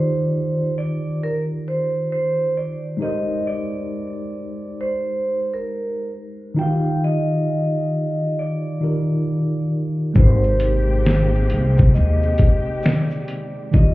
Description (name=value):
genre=lo-fi hip hop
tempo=67 BPM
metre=4/4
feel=swing 62% on 16ths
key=unclear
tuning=A4 = 439 Hz
part: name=vibraphone with hard mallets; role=melody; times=0.0-13.9 s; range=Bb4 to G5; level=-25 LUFS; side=right 1 dB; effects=low-pass filter
part: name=mellow tine electric piano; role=accompaniment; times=0.0-13.9 s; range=Eb3 to F5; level=-23 LUFS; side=equal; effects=medium stereo tremolo, low-pass filter
part: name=dark studio string section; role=sustained chords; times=10.2-13.7 s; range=C3 to G4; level=-26 LUFS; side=left 1 dB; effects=low-pass filter
part: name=upright bass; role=bass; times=10.2-13.9 s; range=Ab1 to Eb2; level=-17 LUFS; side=equal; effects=none
part: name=dusty soul sampler-style drum kit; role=drums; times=10.2-13.9 s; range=hi-hat, kick drum, shaker, snare drum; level=-16 LUFS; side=equal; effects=overdrive
room=light reverb, studio ambience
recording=heard muffled through a wall, club reverb, EQ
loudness=-18 LUFS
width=side -18 dB against mid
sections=0.0-13.9 A section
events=none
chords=0.0 Ebmaj9; 3.0 Abmaj9; 6.6 Ebmaj9; 10.2 Abmaj9